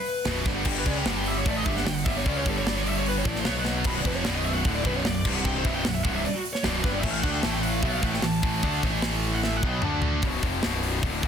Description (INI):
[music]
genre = heavy metal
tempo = 150 BPM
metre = 4/4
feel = straight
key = B minor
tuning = A4 = 440 Hz
[part]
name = high-gain lead guitar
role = melody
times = 0.0-9.9 s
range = F#4 to B5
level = -32 LUFS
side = left 1 dB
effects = distortion, digital delay
[part]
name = tight metal drum kit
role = drums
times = 0.1-11.3 s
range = crash cymbal, hi-hat, kick drum, snare drum, toms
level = -29 LUFS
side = equal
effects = none
[part]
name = heavy high-gain guitar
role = riff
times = 0.3-11.3 s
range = B1 to D4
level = -33 LUFS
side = equal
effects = distortion
[part]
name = scooped high-gain guitar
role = riff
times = 0.3-10.2 s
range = B1 to D4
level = -31 LUFS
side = right 11 dB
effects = distortion
[part]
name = tight distorted guitar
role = riff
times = 0.3-11.3 s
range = B1 to D4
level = -32 LUFS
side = left 12 dB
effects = distortion
[part]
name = fuzz picked electric bass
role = bass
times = 0.3-11.3 s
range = B0 to D2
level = -30 LUFS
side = equal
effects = overdrive
[sound]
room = light reverb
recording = dense, heavily limited modern master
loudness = -23 LUFS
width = side -8 dB against mid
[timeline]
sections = 0.0-10.2 A section; 10.2-11.3 B section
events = lead electric guitar solo 0.0-10.2; drum fill 3.7, 9.4-10.2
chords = 0.0 Bm; 0.7 G5; 3.5 B5; 3.9 Bm; 5.3 C5; 5.7 Bm; 7.0 A5; 9.8 D5; 10.2 Bm